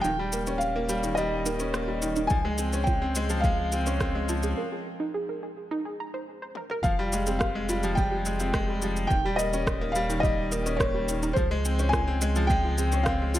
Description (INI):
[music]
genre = piano and strings electronica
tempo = 106 BPM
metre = 4/4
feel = straight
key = F minor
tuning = A4 = 440 Hz
[part]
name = felt-muted upright piano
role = melody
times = 0.0-13.4 s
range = C5 to Ab5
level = -30 LUFS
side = equal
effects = none
[part]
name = analog pluck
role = arpeggios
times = 0.0-13.4 s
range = Eb4 to Bb5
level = -36 LUFS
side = right 3 dB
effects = chorus, sidechain pumping, tape echo
[part]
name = bright concert grand piano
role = riff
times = 0.0-13.4 s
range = Eb3 to Db4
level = -30 LUFS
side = left 1 dB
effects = tape echo
[part]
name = round analog bass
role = bass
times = 0.0-13.4 s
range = Eb1 to Db2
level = -30 LUFS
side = equal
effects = sidechain pumping
[part]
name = deep house drum kit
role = drums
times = 0.0-13.4 s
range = rim click, shaker, toms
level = -33 LUFS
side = equal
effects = high-pass filter on perc, high-pass filter on snare, high-pass filter on toms
[part]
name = electronic kick drum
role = drums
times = 2.3-13.2 s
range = none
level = -28 LUFS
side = equal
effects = none
[sound]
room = light reverb, digital ambience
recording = none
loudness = -24 LUFS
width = side -13 dB against mid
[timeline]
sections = 0.0-6.8 A section; 6.8-13.4 B section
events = build-up 0.0-6.8; filter sweep on synth arpeggio sound 0.0-6.8; break 4.6-6.8; drum fill 6.6; drop 6.8-13.4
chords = 0.0 Eb7; 2.3 Dbmaj7; 4.6 Abadd9; 6.8 Fmadd9; 9.1 Eb7; 11.4 Dbmaj7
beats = | 0.04 0.61 1.18 1.74 | 2.31 2.88 3.44 4.01 | 4.57 5.14 5.71 6.27 | 6.84 7.40 7.97 8.54 | 9.10 9.67 10.23 10.80 | 11.37 11.93 12.50 13.06